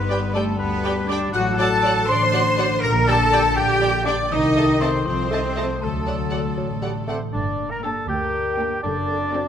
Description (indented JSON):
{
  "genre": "cinematic, playful, whimsical film cue",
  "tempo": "80 BPM (dotted quarters)",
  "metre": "6/8",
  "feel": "straight",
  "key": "G minor",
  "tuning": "A4 = 440 Hz",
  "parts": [
    { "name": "glockenspiel with rubber mallets", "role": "melody", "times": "0.0-7.0 s", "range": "A5 to C7", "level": "-29 LUFS", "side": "left 4 dB", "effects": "none" },
    { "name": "mellow hollow flute section", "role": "second line", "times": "0.0-9.5 s", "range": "A4 to C6", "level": "-27 LUFS", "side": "left 2 dB", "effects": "none" },
    { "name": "rich studio violin section", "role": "second line", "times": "0.0-9.5 s", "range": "D4 to C6", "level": "-30 LUFS", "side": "equal", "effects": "none" },
    { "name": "warm oboe", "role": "second line", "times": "0.0-9.5 s", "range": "A4 to C6", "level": "-28 LUFS", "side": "right 2 dB", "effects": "none" },
    { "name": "dark French horn section", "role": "sustained chords", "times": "0.0-9.4 s", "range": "D3 to Bb4", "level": "-27 LUFS", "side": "left 4 dB", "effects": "none" },
    { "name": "concert harp", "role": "arpeggios", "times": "0.0-9.5 s", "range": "F#2 to Eb5", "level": "-30 LUFS", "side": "left 8 dB", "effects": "none" },
    { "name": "dark studio double bass section", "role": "bass", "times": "0.0-9.4 s", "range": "F#1 to D2", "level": "-27 LUFS", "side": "right 4 dB", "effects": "none" },
    { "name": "rich studio cello section", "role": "bass", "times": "0.0-9.4 s", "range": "D2 to D5", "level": "-25 LUFS", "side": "equal", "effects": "none" },
    { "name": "warm studio violin section", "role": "melody", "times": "0.1-9.5 s", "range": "G4 to A5", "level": "-34 LUFS", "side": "left 2 dB", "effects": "none" },
    { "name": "warm clarinet", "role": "second line", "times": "0.1-9.5 s", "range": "C4 to Eb5", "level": "-33 LUFS", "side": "equal", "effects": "none" },
    { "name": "warm bassoon", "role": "accompaniment", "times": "0.1-7.2 s", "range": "F#3 to A3", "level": "-31 LUFS", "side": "right 2 dB", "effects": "none" },
    { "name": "warm studio viola section", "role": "accompaniment", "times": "0.1-9.5 s", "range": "Bb3 to Eb5", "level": "-32 LUFS", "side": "right 2 dB", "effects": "none" }
  ],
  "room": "moderate scoring stage reverb, RT60 1.6 s",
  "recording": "none",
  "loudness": "-18 LUFS",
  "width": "side -8 dB against mid",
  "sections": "0.0-7.3 A section; 7.3-9.5 B section",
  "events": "none",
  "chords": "0.0 G; 1.3 D7/A; 2.8 Gm/Bb; 4.3 Adim/C; 5.8 D; 7.3 Gm; 8.8 D7/F#"
}